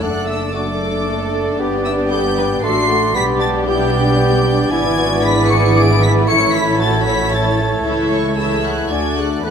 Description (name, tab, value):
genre	quick classical-period movement for symphony orchestra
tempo	115 BPM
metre	3/4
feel	rubato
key	A major from 4.7 s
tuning	A4 = 440 Hz
part	clear studio violin section	melody	0.0-9.5 s	C#6 to D7	-22 LUFS	left 2 dB	none
part	mellow clarinet	second line	0.0-9.5 s	D4 to A4	-25 LUFS	left 1 dB	none
part	mellow concert flute	second line	0.0-9.5 s	C#5 to D6	-25 LUFS	equal	none
part	warm oboe	second line	0.0-9.5 s	B4 to D5	-26 LUFS	right 2 dB	none
part	warm studio violin section	second line	0.0-9.5 s	F#4 to E5	-26 LUFS	left 3 dB	none
part	mellow bassoon	accompaniment	0.0-9.5 s	A3 to B3	-24 LUFS	right 1 dB	none
part	warm studio viola section	accompaniment	0.0-9.5 s	E3 to A4	-22 LUFS	equal	none
part	mellow French horn section	sustained chords	0.0-9.5 s	A3 to B4	-24 LUFS	left 6 dB	none
part	dark studio cello section	bass	0.0-9.5 s	B3 to B4	-24 LUFS	right 3 dB	none
part	warm studio double bass section	bass	0.0-9.5 s	F#1 to E2	-20 LUFS	right 2 dB	none
room	moderate scoring stage reverb, RT60 1.8 s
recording	none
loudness	-13 LUFS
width	side -7 dB against mid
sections	0.0-9.5 A section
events	none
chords	0.0 D/F#; 1.6 G; 2.6 D7/A; 3.2 G/B; 4.7 E7/G#; 6.3 A; 7.8 A/C#; 8.9 D